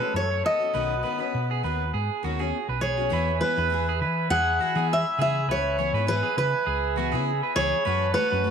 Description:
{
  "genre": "highlife",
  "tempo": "101 BPM",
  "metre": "4/4",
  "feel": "swing 54% on 16ths",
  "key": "E major",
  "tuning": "A4 = 440 Hz",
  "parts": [
    { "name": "fingerpicked steel-string acoustic guitar", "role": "melody", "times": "0.0-8.5 s", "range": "B4 to F#5", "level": "-25 LUFS", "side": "equal", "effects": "none" },
    { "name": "growling tenor saxophone", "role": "second line", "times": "0.0-2.5 s", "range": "G#3 to B3", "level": "-36 LUFS", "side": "left 9 dB", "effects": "none" },
    { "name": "picked steel-string acoustic guitar", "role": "accompaniment", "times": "0.0-8.5 s", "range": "D#3 to G#4", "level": "-33 LUFS", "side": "left 10 dB", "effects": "none" },
    { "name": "electric guitar at the edge of break-up", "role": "arpeggios", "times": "0.0-8.5 s", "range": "F#4 to C#5", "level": "-29 LUFS", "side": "right 9 dB", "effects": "tape echo" },
    { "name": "hollow-body short-scale fingered electric bass", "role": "bass", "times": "0.1-8.5 s", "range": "B1 to E3", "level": "-28 LUFS", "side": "equal", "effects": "none" },
    { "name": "mellow tonewheel organ", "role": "sustained chords", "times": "3.1-8.5 s", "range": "E5 to C#6", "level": "-33 LUFS", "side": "equal", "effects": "slow rotary speaker" }
  ],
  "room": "moderate echo chamber reverb, RT60 1.8 s, studio ambience",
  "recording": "1960s-style stereo with parts hard left and right",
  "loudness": "-22 LUFS",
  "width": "side -7 dB against mid",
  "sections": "0.0-3.1 A section; 3.1-8.5 B section",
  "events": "none",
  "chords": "0.0 F#m; 0.7 Badd9; 3.1 E; 7.9 F#m",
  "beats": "0.15 | 0.75 1.34 1.94 2.53 | 3.12 3.72 4.31 4.91 | 5.50 6.09 6.69 7.28 | 7.87 8.47"
}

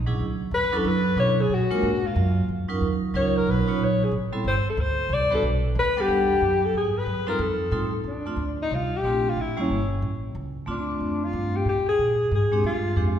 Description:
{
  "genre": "jazz",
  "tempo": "183 BPM",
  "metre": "4/4",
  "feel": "swing 64% on 8ths",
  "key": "Bb major from 8.0 s",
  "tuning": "A4 = 440 Hz",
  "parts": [
    { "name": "upright bass", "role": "bass", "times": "0.0-13.2 s", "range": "G1 to B2", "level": "-26 LUFS", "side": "equal", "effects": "none" },
    { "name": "vibraphone with medium hard mallets", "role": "accompaniment", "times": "0.1-13.2 s", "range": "F#3 to F#5", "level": "-28 LUFS", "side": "right 3 dB", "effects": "none" },
    { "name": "mellow alto saxophone", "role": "melody", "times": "0.5-13.2 s", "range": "C#4 to D5", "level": "-24 LUFS", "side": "left 2 dB", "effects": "none" }
  ],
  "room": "wet concert hall reverb, RT60 1.9 s",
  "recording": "recorded in a church or concert hall",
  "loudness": "-21 LUFS",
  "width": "side -9 dB against mid",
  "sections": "0.0-8.0 A section; 8.0-13.2 B section",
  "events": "none",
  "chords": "0.2 Dmaj7; 1.5 A#7(no3); 2.8 D#m7; 4.1 Am7; 4.8 D7; 5.4 Gmaj7; 6.7 G#m7; 7.4 F7; 8.0 Bbmaj9; 9.4 A7; 10.7 Dm7; 12.0 Bb13",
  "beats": "| 0.19 0.52 0.85 1.17 | 1.50 1.83 2.16 2.48 | 2.81 3.14 3.46 3.79 | 4.12 4.45 4.77 5.10 | 5.43 5.76 6.08 6.41 | 6.74 7.07 7.39 7.72 | 8.05 8.38 8.71 9.03 | 9.36 9.69 10.02 10.35 | 10.67 11.00 11.33 11.66 | 11.99 12.32 12.64 12.97"
}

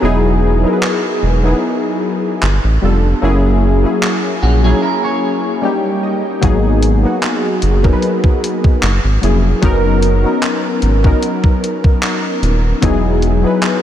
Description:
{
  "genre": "contemporary R&B",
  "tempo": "75 BPM",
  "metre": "4/4",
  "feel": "swing 54% on 16ths",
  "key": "unclear",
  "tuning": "A4 = 440 Hz",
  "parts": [
    { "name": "warm analog keys", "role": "accompaniment", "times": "0.0-13.8 s", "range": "F#3 to G5", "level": "-15 LUFS", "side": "left 1 dB", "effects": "chorus" },
    { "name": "round analog bass", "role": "bass", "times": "0.0-13.5 s", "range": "D#1 to A#1", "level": "-13 LUFS", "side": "equal", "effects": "none" },
    { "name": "gated 80s digital drum machine", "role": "drums", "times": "0.8-13.8 s", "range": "handclaps, hi-hat, kick drum", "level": "-18 LUFS", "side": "equal", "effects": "gated reverb" },
    { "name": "clean electric guitar", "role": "arpeggios", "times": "4.4-5.6 s", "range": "C#4 to C#5", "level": "-25 LUFS", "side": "right 2 dB", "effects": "analog chorus, ping-pong delay" }
  ],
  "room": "light reverb",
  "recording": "none",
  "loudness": "-12 LUFS",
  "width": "side -11 dB against mid",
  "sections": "0.0-13.8 A section",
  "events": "break 0.0-6.4; synth keys fill 5.2-6.4",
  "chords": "0.0 Emaj7; 2.4 G9; 3.2 F#7; 5.6 D#7; 6.4 G#m7; 8.8 F#7; 9.6 Bmaj7/F#; 12.8 Emaj7",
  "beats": "| 0.03 0.82 1.62 2.42 | 3.23 4.03 4.83 5.62 | 6.42 7.22 8.03 8.82 | 9.62 10.43 11.22 12.03 | 12.82 13.62"
}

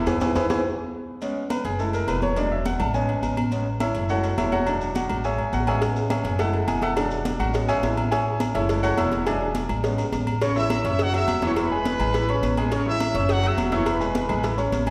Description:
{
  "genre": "latin, salsa",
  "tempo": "209 BPM",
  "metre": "4/4",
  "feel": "straight",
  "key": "A major",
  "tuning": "A4 = 444 Hz",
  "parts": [
    { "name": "bright baby grand piano", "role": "accompaniment", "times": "0.0-14.9 s", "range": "C#3 to C#6", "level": "-28 LUFS", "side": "equal", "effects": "none" },
    { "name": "upright bass", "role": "bass", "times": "0.0-14.9 s", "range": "E1 to E2", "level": "-30 LUFS", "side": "equal", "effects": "none" },
    { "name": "congas", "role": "percussion", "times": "0.1-14.9 s", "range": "none", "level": "-32 LUFS", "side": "equal", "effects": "none" },
    { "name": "cowbell", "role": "percussion", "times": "0.1-0.6, 5.8-14.9 s", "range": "none", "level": "-34 LUFS", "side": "equal", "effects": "none" },
    { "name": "maracas", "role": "percussion", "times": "0.1-14.9 s", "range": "none", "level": "-48 LUFS", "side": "equal", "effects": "none" },
    { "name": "timbales and agogo bells", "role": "percussion", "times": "0.1-14.9 s", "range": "none", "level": "-34 LUFS", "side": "equal", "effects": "none" },
    { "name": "bright trumpet section", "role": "melody", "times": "10.4-14.6 s", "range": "F#4 to E6", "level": "-29 LUFS", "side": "equal", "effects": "none" }
  ],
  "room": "wet recital hall reverb, RT60 1.7 s",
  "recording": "recorded in a church or concert hall",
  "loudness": "-24 LUFS",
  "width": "mono",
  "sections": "0.0-1.2 A section; 1.2-10.4 B section; 10.4-14.9 C section",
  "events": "band accent 0.1-1.2; drum fill 0.6-1.2; grand piano solo 1.2-10.4",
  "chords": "0.1 E; 0.6 N.C.; 1.2 F#sus24; 1.8 F#m7; 2.4 E7; 2.9 Amaj7; 4.1 F#m7; 4.7 E7; 5.2 Amaj7; 6.4 F#m7; 7.0 E7; 7.5 Amaj7; 8.7 F#m7; 9.3 E7; 9.8 Amaj7; 10.4 A; 11.0 F#5; 11.6 E; 12.1 Amaj7; 13.3 F#5; 13.9 E",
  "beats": "| 0.07 0.36 0.65 0.93 | 1.22 1.51 1.79 2.08 | 2.37 2.66 2.94 3.23 | 3.52 3.81 4.09 4.38 | 4.67 4.96 5.24 5.53 | 5.82 6.11 6.39 6.68 | 6.97 7.25 7.54 7.83 | 8.12 8.40 8.69 8.98 | 9.27 9.55 9.84 10.13 | 10.42 10.70 10.99 11.28 | 11.57 11.85 12.14 12.43 | 12.72 13.00 13.29 13.58 | 13.87 14.15 14.44 14.73"
}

